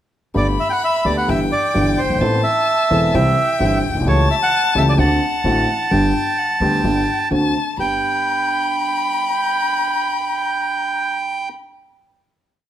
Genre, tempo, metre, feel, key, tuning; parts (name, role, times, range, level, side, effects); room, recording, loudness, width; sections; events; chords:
tango; 130 BPM; 4/4; rubato; G major; A4 = 440 Hz
dark upright piano; accompaniment; 0.3-11.5 s; E1 to A4; -21 LUFS; equal
bandoneon; melody; 0.4-11.5 s; C5 to A5; -19 LUFS; right 3 dB
rich violin; second line; 0.4-11.5 s; F#5 to B5; -22 LUFS; left 5 dB
upright bass; bass; 0.4-8.0 s; E1 to D2; -21 LUFS; equal
moderate large studio reverb, RT60 1.2 s; -15 LUFS; side -11 dB against mid
0.4-7.8 A section; 7.8-11.5 final chord
0.4 Gadd9; 1.3 Em/G; 2.2 Amadd9; 3.1 C; 4.1 A7/C#; 5.0 D7; 5.9 G; 7.3 D7; 7.8 G